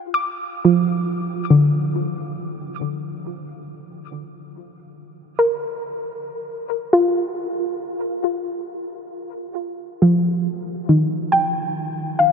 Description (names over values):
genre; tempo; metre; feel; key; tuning
ambient; 69 BPM; 3/4; straight; unclear; A4 = 440 Hz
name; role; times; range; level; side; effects
soft round pluck; solo; 0.1-12.3 s; D3 to D6; -19 LUFS; equal; analog chorus, ping-pong delay
room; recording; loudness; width
wet huge ambient reverb, RT60 8.7 s; none; -19 LUFS; side -6 dB against mid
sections
0.0-3.7 A section; 3.7-12.3 B section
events
none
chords
0.0 Dm; 3.7 Fsus4; 8.9 Ebadd9